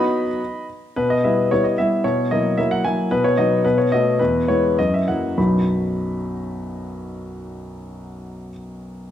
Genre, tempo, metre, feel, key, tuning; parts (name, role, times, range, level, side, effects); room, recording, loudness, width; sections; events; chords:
classical-period piano sonatina; 97-113 BPM; 2/4; rubato; B major; A4 = 440 Hz
clear grand piano; solo; 0.0-9.1 s; B1 to B5; -18 LUFS; left 1 dB
wet recital hall reverb, RT60 1.4 s; -17 LUFS; side -10 dB against mid
1.0-5.4 A section; 5.4-7.8 B section
slowing down 2.6-5.4
0.0 B; 1.0 Em/B; 2.0 F#7/B; 3.1 B; 3.6 B7; 4.2 E; 4.8 F#7; 5.4 B